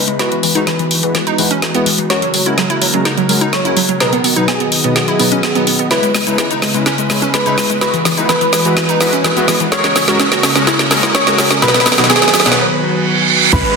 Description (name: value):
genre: progressive house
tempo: 126 BPM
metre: 4/4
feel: straight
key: unclear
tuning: A4 = 440 Hz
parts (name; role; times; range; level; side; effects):
- plucky unison lead; melody; 0.0-13.8 s; G#4 to C#5; -21 LUFS; equal; dub echo
- soft round pluck; second line; 0.0-13.8 s; G#5 to C#6; -23 LUFS; right 2 dB; chorus, sidechain pumping, dub echo
- airy breathy pad; sustained chords; 0.0-13.8 s; C#3 to D#5; -20 LUFS; equal; chorus, sidechain pumping
- glassy wavetable pluck; arpeggios; 0.0-13.7 s; E3 to A#4; -18 LUFS; right 2 dB; chorus, sidechain pumping, dub echo
- deep house drum kit; drums; 0.1-13.7 s; crash cymbal, hi-hat, shaker, snare drum; -15 LUFS; equal; none
- soft supersaw; stabs; 0.2-13.6 s; B2 to B4; -20 LUFS; left 2 dB; sidechain pumping, low-pass filter, dub echo
- riser, reverse cymbal and downlifter; sound effects; 9.1-13.8 s; none; -19 LUFS; right 5 dB; none
- plucky analog bass; bass; 13.5-13.6 s; C#2; -17 LUFS; equal; sidechain pumping
- electronic kick drum; drums; 13.5-13.6 s; none; -17 LUFS; equal; none
room: wet digital room reverb, RT60 0.9 s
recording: dense, heavily limited modern master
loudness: -11 LUFS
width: side -4 dB against mid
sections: 0.0-13.5 A section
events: build-up 0.0-13.5; drum fill 0.0-12.6; filter sweep on supersaw synth 0.0-13.5; filter sweep on analog synth pad 0.0-13.5; filter sweep on digital synth lead 0.0-13.5; filter sweep on synth pluck 0.0-13.5; break 12.6-13.5; reverse cymbal 12.6-13.5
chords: 0.2 Eadd9; 2.1 F#add9; 4.0 B; 5.9 C#m7; 7.8 Eadd9; 9.7 F#add9; 11.6 B